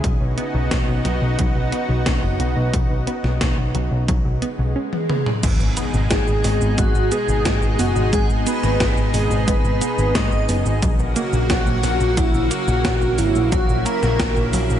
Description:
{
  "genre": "synthwave",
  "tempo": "89 BPM",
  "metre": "4/4",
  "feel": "straight",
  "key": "G# minor",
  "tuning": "A4 = 440 Hz",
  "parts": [
    { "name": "lush unison pad", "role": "sustained chords", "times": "0.0-14.8 s", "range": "B2 to G#4", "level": "-25 LUFS", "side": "equal", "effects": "chorus, sidechain pumping, shimmer reverb" },
    { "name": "wide unison pluck", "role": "arpeggios", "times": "0.0-14.8 s", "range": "F#3 to D#4", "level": "-30 LUFS", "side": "right 3 dB", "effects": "none" },
    { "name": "overdriven picked electric bass", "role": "bass", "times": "0.0-14.8 s", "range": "F#1 to A#2", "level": "-21 LUFS", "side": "equal", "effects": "sidechain pumping" },
    { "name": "electronic kick drum", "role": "drums", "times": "0.0-14.3 s", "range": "none", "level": "-22 LUFS", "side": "equal", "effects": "overdrive" },
    { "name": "gated 80s digital drum machine", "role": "drums", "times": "0.0-14.8 s", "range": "cabasa, crash cymbal, hi-hat, snare drum, toms", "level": "-26 LUFS", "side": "equal", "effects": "gated reverb, gated reverb snare" },
    { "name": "swell and impact", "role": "sound effects", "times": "4.4-8.1 s", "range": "none", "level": "-28 LUFS", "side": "right 1 dB", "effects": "none" },
    { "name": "warm velvety synth lead", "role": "melody", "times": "6.1-14.5 s", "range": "E4 to D#5", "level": "-24 LUFS", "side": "equal", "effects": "chorus, analog delay, shimmer reverb" },
    { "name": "airy dreamy lead", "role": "second line", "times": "6.1-14.5 s", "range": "E4 to D#5", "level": "-30 LUFS", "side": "equal", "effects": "chorus, phaser, cassette tape, diffuse ambient delay, shimmer reverb" }
  ],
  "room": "light reverb, digital ambience",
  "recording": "nothing above 11.0 kHz",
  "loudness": "-17 LUFS",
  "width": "side -10 dB against mid",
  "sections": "0.0-5.4 A section; 5.4-14.8 B section",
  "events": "swell 4.4-5.4; drum fill 4.9-5.4; impact 5.4-8.1",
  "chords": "0.0 Badd9; 5.4 G#m; 10.8 F#"
}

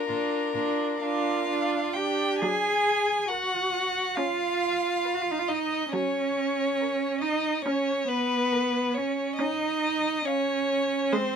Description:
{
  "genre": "classical, slow romantic movement for string quartet",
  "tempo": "69 BPM",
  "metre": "4/4",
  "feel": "rubato",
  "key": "F# major",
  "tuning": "A4 = 440 Hz",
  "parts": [
    { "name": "rich violin", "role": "melody", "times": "0.0-10.9 s", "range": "A#4 to E#5", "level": "-32 LUFS", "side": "left 8 dB", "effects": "none" },
    { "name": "clear violin", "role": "second line", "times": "0.0-11.4 s", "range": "F4 to G#5", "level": "-28 LUFS", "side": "left 2 dB", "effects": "none" },
    { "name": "clear viola", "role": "accompaniment", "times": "0.0-11.4 s", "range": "F#3 to D4", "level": "-29 LUFS", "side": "right 2 dB", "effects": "none" },
    { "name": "clear cello", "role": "bass", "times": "0.1-11.4 s", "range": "Bb2 to G#4", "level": "-27 LUFS", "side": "right 4 dB", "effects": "none" }
  ],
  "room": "light reverb",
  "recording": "minimal, uncompressed stereo recording",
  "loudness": "-24 LUFS",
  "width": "side -7 dB against mid",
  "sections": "0.0-2.4 A section; 2.4-11.4 B section",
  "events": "none",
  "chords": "0.0 Bb; 2.4 F#; 4.2 C#9; 5.9 F#; 9.4 C#"
}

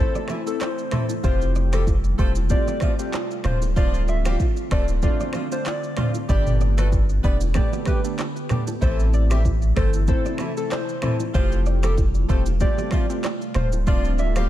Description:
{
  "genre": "afrobeats",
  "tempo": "95 BPM",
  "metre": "4/4",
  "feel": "swing 55% on 16ths",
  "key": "A minor",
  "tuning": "A4 = 440 Hz",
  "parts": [
    { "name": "soft struck synth lead", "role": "melody", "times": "0.0-14.5 s", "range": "A4 to F5", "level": "-30 LUFS", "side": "left 1 dB", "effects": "chorus, ping-pong delay" },
    { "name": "warm analog keys", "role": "accompaniment", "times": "0.0-14.5 s", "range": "A3 to A4", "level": "-30 LUFS", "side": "left 1 dB", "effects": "chorus" },
    { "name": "glassy FM pad", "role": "sustained chords", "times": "0.0-14.5 s", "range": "C3 to G4", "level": "-31 LUFS", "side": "right 1 dB", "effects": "ensemble chorus, built-in reverb, sidechain pumping" },
    { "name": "bongos and congas", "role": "percussion", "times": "0.1-14.5 s", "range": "none", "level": "-33 LUFS", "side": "right 4 dB", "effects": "none" },
    { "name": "direct-recorded clean electric guitar", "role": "riff", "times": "0.2-14.4 s", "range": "A4 to E5", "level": "-38 LUFS", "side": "right 4 dB", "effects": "none" },
    { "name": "afro-pop drum kit", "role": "drums", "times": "0.2-14.5 s", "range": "finger snaps, handclaps, kick drum, rim click, shaker, toms", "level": "-24 LUFS", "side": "equal", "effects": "none" },
    { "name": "warm horn section", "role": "second line", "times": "0.3-14.5 s", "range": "E3 to B4", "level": "-37 LUFS", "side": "left 1 dB", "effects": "ping-pong delay" },
    { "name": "punchy sub bass", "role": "bass", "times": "1.2-14.5 s", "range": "D1 to A1", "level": "-21 LUFS", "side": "equal", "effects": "none" }
  ],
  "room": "light reverb",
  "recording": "none",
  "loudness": "-19 LUFS",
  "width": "side -13 dB against mid",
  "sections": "0.0-14.5 A section",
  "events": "none",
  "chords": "0.0 Am; 1.2 Fadd9; 3.4 Dm7; 6.3 Gadd9; 8.8 Am; 11.3 Fadd9; 13.6 Dm7"
}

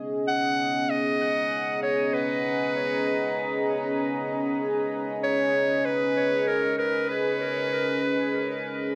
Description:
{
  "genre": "ambient dub",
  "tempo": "free time",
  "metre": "none",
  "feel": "none",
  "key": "unclear",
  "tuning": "A4 = 442 Hz",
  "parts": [
    { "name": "warm analog pad", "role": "sustained chords", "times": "0.0-8.9 s", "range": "B3 to A#5", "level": "-30 LUFS", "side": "equal", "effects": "chorus" },
    { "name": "bright clarinet", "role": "melody", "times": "0.3-8.9 s", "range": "A#4 to F#5", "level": "-28 LUFS", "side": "equal", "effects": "dub echo" }
  ],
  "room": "wet scoring stage reverb, RT60 1.8 s, small room reverb",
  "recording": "none",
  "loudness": "-26 LUFS",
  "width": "mono",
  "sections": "0.0-8.9 A section",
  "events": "none",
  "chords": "0.0 G#madd9"
}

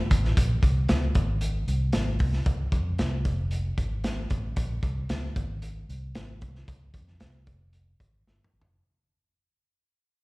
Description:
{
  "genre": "uptempo 1960s-style soul",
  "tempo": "114 BPM",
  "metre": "4/4",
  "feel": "straight",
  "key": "unclear",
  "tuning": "A4 = 442 Hz",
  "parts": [
    { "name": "vintage muted fingered electric bass", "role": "bass", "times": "0.1-8.8 s", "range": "F1 to F2", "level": "-28 LUFS", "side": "equal", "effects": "none" },
    { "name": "crunchy breakbeat drum kit", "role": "drums", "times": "0.1-8.7 s", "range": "hi-hat, kick drum, snare drum, toms", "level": "-27 LUFS", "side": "equal", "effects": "slapback echo" }
  ],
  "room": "little or no reverb",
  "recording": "live gig heard through the venue's PA, recital hall reverb",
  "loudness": "-24 LUFS",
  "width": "side -24 dB against mid",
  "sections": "0.4-8.8 A section",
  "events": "fade-out 0.4-8.8; drum fill 8.3-8.8",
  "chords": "none"
}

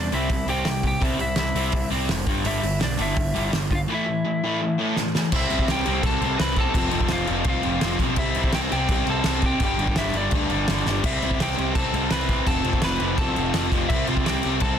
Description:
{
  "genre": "punk rock",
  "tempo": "168 BPM",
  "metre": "4/4",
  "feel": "straight",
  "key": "C major",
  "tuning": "A4 = 440 Hz",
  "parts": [
    { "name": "lightly driven lead guitar", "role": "melody", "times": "0.0-14.8 s", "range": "D4 to B5", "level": "-28 LUFS", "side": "equal", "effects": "none" },
    { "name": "overdriven electric guitar", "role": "riff", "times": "0.0-14.8 s", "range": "F2 to C4", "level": "-25 LUFS", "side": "equal", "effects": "none" },
    { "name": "fuzz picked electric bass", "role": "bass", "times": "0.0-14.8 s", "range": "F1 to D2", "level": "-28 LUFS", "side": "equal", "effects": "overdrive" },
    { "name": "loose indie drum kit", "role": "drums", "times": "0.1-14.7 s", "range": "crash cymbal, hi-hat, kick drum, snare drum", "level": "-25 LUFS", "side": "equal", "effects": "none" }
  ],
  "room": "little or no reverb",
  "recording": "dense, heavily limited modern master",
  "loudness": "-20 LUFS",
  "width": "side -8 dB against mid",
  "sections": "0.0-5.3 A section; 5.3-14.8 B section",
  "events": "drum fill 5.0-5.3, 10.9",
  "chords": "0.0 C; 2.3 G5; 3.9 A5; 5.3 C; 6.7 F; 8.2 C; 9.6 G5; 11.0 C; 12.5 F; 13.9 C"
}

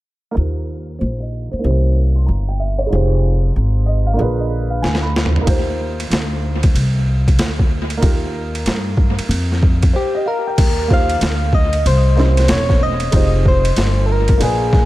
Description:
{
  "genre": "hip hop, jazz-hop",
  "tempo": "94 BPM",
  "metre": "4/4",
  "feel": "swing 64% on 16ths",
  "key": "Eb major",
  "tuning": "A4 = 440 Hz",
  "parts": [
    { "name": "dark upright piano", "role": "accompaniment", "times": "0.3-14.8 s", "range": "D3 to C6", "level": "-23 LUFS", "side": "right 2 dB", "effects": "low-pass filter" },
    { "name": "upright bass", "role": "bass", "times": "0.4-14.9 s", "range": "E1 to G2", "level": "-17 LUFS", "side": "equal", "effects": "none" },
    { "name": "boom bap sampler-style drum kit", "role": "drums", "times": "4.8-14.9 s", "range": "crash cymbal, hi-hat, kick drum, ride cymbal, snare drum, toms", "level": "-17 LUFS", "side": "equal", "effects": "overdrive, analog delay" },
    { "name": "soft struck synth lead", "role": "melody", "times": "10.0-14.9 s", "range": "G4 to F5", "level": "-19 LUFS", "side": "left 1 dB", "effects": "chorus, analog delay" },
    { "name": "vibraphone with soft mallets", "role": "second line", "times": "14.4-14.9 s", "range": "Ab5", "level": "-21 LUFS", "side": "equal", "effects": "none" }
  ],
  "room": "digital ambience",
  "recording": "echo-heavy mix",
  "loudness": "-14 LUFS",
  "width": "side -16 dB against mid",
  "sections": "0.4-10.6 A section; 10.6-14.9 B section",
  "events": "filter sweep on upright piano 0.4-10.6; upright piano fill 3.6-5.5; drum fill 4.8-5.5; break 9.9-10.6",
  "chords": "0.4 Eb69; 1.6 C7b9; 2.9 Fm9; 4.2 Bb7b9; 5.5 Eb69; 11.9 C7b9; 13.1 Fm9"
}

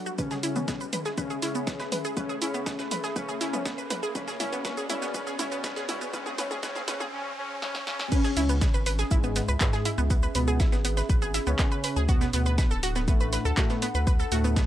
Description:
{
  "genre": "melodic techno",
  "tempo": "121 BPM",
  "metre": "4/4",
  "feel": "straight",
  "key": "C# phrygian",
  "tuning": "A4 = 443 Hz",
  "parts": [
    { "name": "analog synth brass", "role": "melody", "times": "0.0-14.6 s", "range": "G#2 to C#4", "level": "-33 LUFS", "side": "left 1 dB", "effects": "chorus, sidechain pumping, tape echo" },
    { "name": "riser", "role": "sound effects", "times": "0.0-8.1 s", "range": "none", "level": "-38 LUFS", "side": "right 1 dB", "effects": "none" },
    { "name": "warbly tape-like pad", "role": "texture", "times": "0.0-14.7 s", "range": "B3 to B5", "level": "-38 LUFS", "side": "left 1 dB", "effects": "chorus, built-in reverb, sidechain pumping" },
    { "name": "wide unison pluck", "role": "arpeggios", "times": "0.1-14.6 s", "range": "B3 to B5", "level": "-32 LUFS", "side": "right 1 dB", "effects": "sidechain pumping, analog delay" },
    { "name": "punchy analog drum machine", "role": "drums", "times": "0.1-14.7 s", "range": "crash cymbal, handclaps, hi-hat, shaker, snare drum, toms", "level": "-34 LUFS", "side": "right 1 dB", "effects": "sidechain pumping on perc, sidechain pumping on hats, sidechain pumping on toms, sidechain pumping on cymbals" },
    { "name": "dusty soul sampler-style drum kit", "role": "drums", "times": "0.2-14.7 s", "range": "hi-hat, snare drum", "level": "-39 LUFS", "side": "equal", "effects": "sidechain pumping on hats, high-pass filter on hats, high-pass filter on snare" },
    { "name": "electronic kick drum", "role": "drums", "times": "0.2-14.7 s", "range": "none", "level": "-25 LUFS", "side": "equal", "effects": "none" },
    { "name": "round analog bass", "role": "bass", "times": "8.4-14.6 s", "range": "D1 to D2", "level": "-27 LUFS", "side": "equal", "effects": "sidechain pumping" }
  ],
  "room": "digital ambience",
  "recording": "dry, gritty hardware recording, high-pass filter",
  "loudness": "-25 LUFS",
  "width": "side -12 dB against mid",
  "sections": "0.0-8.1 A section; 8.1-14.7 B section",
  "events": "build-up 0.0-8.1; filter sweep 0.0-8.1; riser 0.0-8.1; drum fill 0.2-7.1, 7.6-8.1; drop 8.1-14.7",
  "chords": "0.2 C#m7; 12.1 D6"
}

